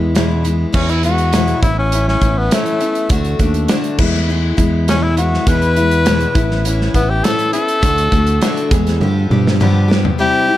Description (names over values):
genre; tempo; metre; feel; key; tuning
folk rock and heartland rock; 102 BPM; 4/4; straight; E major; A4 = 437 Hz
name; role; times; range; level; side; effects
picked steel-string acoustic guitar; accompaniment; 0.0-10.6 s; E2 to G#4; -19 LUFS; left 3 dB; none
fingered electric bass; bass; 0.0-10.1 s; A1 to G2; -16 LUFS; right 1 dB; none
natural country drum kit; drums; 0.2-10.2 s; crash cymbal, hi-hat, kick drum, snare drum, toms; -17 LUFS; right 1 dB; none
breathy tenor saxophone; melody; 0.7-10.6 s; A3 to B4; -18 LUFS; left 2 dB; tape echo
room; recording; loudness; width
light reverb, studio ambience; dark, warm production; -12 LUFS; side -14 dB against mid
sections
0.0-10.2 A section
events
tenor saxophone solo 0.0-10.2; drum fill 9.0-10.2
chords
0.0 E; 1.6 Aadd9; 3.1 D; 4.0 E; 6.4 Aadd9; 7.8 D; 8.7 E; 9.0 G7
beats
0.15 | 0.74 1.33 1.92 2.51 | 3.10 3.69 4.29 4.88 | 5.47 6.06 6.65 7.24 | 7.83 8.42 9.01 9.60 | 10.19